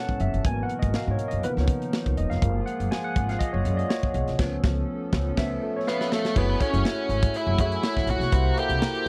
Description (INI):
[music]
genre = polished 1980s jazz-funk pop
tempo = 122 BPM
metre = 4/4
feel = swing 54% on 16ths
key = unclear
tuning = A4 = 439 Hz
[part]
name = barky tine electric piano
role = accompaniment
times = 0.0-9.1 s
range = D#3 to G#5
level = -32 LUFS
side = equal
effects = overdrive, lush chorus
[part]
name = hollow soft pad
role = sustained chords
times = 0.0-9.1 s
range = B2 to Bb5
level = -38 LUFS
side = equal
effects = chorus
[part]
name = upright bass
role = bass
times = 0.1-9.1 s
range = E1 to C#3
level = -29 LUFS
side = equal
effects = none
[part]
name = tight funk drum kit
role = drums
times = 0.1-9.1 s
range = crash cymbal, hi-hat, kick drum, snare drum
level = -29 LUFS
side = equal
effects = none
[part]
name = octave-fuzz lead guitar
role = melody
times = 5.9-9.1 s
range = A3 to G4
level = -30 LUFS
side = equal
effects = distortion, slapback echo
[sound]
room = little or no reverb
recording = dry, close 1970s-style studio recording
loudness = -25 LUFS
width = mono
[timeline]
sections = 0.0-6.4 A section; 6.4-9.1 B section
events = tine electric piano solo 0.0-6.4; band accent 4.4-6.4; drum fill 5.9-6.4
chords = 0.5 G#m9; 1.4 C#13; 2.4 F#maj9; 4.4 C#aug7; 6.4 F#m9; 8.3 C7#11